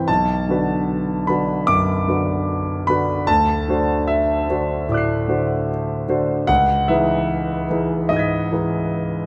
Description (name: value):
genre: classical, impressionist solo piano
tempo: 75 BPM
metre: 4/4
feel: rubato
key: unclear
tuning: A4 = 442 Hz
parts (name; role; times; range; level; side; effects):
- clear concert grand piano; solo; 0.0-9.3 s; B1 to C7; -20 LUFS; equal; none
room: moderate concert hall reverb, RT60 2.1 s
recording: none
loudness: -20 LUFS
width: mono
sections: 0.0-9.3 A section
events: none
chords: 0.1 Bm7; 3.3 D9; 6.5 C#m9